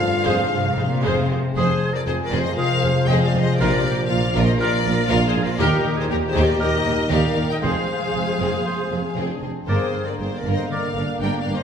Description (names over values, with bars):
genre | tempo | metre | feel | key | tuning
cinematic, heroic adventure film score | 118 BPM | 4/4 | straight | F dorian | A4 = 442 Hz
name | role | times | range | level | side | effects
rich symphonic violin section | melody | 0.0-11.6 s | Bb4 to G5 | -27 LUFS | left 3 dB | none
rich symphonic violin section | second line | 0.0-11.6 s | Bb3 to F5 | -30 LUFS | left 3 dB | none
silver concert flute | second line | 0.0-11.6 s | G4 to F5 | -29 LUFS | left 1 dB | none
warm clarinet | second line | 0.0-10.9 s | F4 to F5 | -34 LUFS | left 1 dB | none
rich symphonic viola section | accompaniment | 0.0-11.6 s | D4 to C5 | -28 LUFS | equal | none
dark French horn section | sustained chords | 0.0-11.6 s | Ab3 to Bb4 | -31 LUFS | left 2 dB | none
warm trombone section | sustained chords | 0.0-11.6 s | Bb2 to Bb3 | -28 LUFS | right 3 dB | none
concert harp | arpeggios | 0.0-11.6 s | F2 to Bb5 | -27 LUFS | left 4 dB | none
mellow tuba | bass | 0.0-11.6 s | F1 to Eb2 | -28 LUFS | right 2 dB | none
rich symphonic cello section | bass | 0.0-11.5 s | Eb2 to C3 | -28 LUFS | right 3 dB | none
rich symphonic double bass section | bass | 0.0-11.5 s | F1 to Eb2 | -28 LUFS | right 2 dB | none
clear oboe | second line | 1.6-10.9 s | Ab4 to D5 | -30 LUFS | right 1 dB | none
room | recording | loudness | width
wet recital hall reverb, RT60 1.5 s | recorded in a church or concert hall | -18 LUFS | side -7 dB against mid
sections
0.0-1.6 A section; 1.6-11.6 B section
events
none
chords
0.0 Fmadd9; 1.6 Fm; 3.6 Bb; 5.6 Eb; 7.6 Fm; 9.7 Gm